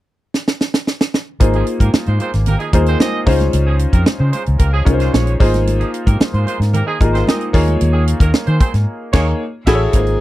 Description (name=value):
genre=polished 1980s jazz-funk pop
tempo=112 BPM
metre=4/4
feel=straight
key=Ab major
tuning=A4 = 441 Hz
part: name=tight funk drum kit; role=drums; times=0.3-10.2 s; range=crash cymbal, hi-hat, kick drum, snare drum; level=-15 LUFS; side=equal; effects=none
part: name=clear concert grand piano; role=accompaniment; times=1.4-10.2 s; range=Bb3 to Db5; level=-20 LUFS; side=left 2 dB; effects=analog chorus
part: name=vintage muted fingered electric bass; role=bass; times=1.4-10.1 s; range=Ab1 to Eb3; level=-15 LUFS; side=equal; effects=none
part: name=congas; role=percussion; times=1.4-8.7 s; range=none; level=-27 LUFS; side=right 3 dB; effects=none
part: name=warm horn section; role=second line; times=1.5-9.8 s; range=Eb3 to E5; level=-23 LUFS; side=right 4 dB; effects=none
part: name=breathy alto saxophone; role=melody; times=9.7-10.2 s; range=Ab4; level=-18 LUFS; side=equal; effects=none
room=little or no reverb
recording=dry, close 1970s-style studio recording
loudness=-13 LUFS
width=side -16 dB against mid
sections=0.0-1.4 A section; 1.4-9.9 B section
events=drum fill 0.3-1.4; band accent 8.9-9.9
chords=0.0 N.C.; 1.4 Ab6; 3.3 Dbmaj7; 5.4 Ab6; 7.5 Eb7sus4; 9.4 A6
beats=0.34 0.87 | 1.40 1.94 2.47 3.00 | 3.54 4.07 4.60 5.14 | 5.67 6.20 6.74 7.27 | 7.80 8.34 8.87 9.41 | 9.94